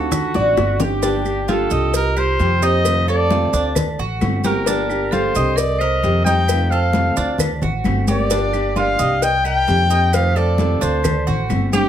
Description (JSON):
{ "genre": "latin, Cuban son and guajira", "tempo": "132 BPM", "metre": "4/4", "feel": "straight", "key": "G minor", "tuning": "A4 = 441 Hz", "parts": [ { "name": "warm trumpet", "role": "melody", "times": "0.0-11.9 s", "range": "F#4 to G5", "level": "-20 LUFS", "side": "left 1 dB", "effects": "plate reverb" }, { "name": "marimba with hard mallets", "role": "second line", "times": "0.0-11.9 s", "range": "D4 to Eb5", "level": "-26 LUFS", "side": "right 6 dB", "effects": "none" }, { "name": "nylon-string guitar", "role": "accompaniment", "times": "0.0-11.9 s", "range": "C3 to G4", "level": "-24 LUFS", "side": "left 3 dB", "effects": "none" }, { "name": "Cuban tres", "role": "arpeggios", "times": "0.0-11.9 s", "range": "D4 to Eb5", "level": "-25 LUFS", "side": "right 3 dB", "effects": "none" }, { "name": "upright bass", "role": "bass", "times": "0.0-11.9 s", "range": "G1 to F2", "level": "-21 LUFS", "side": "equal", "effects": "none" }, { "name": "bongos and cowbell", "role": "percussion", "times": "0.1-11.9 s", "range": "none", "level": "-25 LUFS", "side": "left 6 dB", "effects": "none" }, { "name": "claves", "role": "percussion", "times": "0.1-11.7 s", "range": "none", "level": "-34 LUFS", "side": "left 4 dB", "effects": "none" }, { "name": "congas", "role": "percussion", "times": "0.1-11.9 s", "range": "none", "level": "-24 LUFS", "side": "left 2 dB", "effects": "none" }, { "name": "maracas", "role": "percussion", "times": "0.1-11.9 s", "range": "none", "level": "-30 LUFS", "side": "right 11 dB", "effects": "none" } ], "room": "moderate studio ambience, RT60 0.5 s", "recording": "none", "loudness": "-15 LUFS", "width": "side -10 dB against mid", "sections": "0.0-1.0 A section; 1.0-11.9 B section", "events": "drum fill 0.3-1.0", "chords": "0.1 D7; 1.0 Gm9; 1.9 Cm7; 2.9 F7; 3.8 D7; 4.7 Gm9; 5.6 Cm7; 6.5 F7; 7.4 D7; 8.3 Gm7; 9.2 Cm7; 10.1 F7; 11.0 D7" }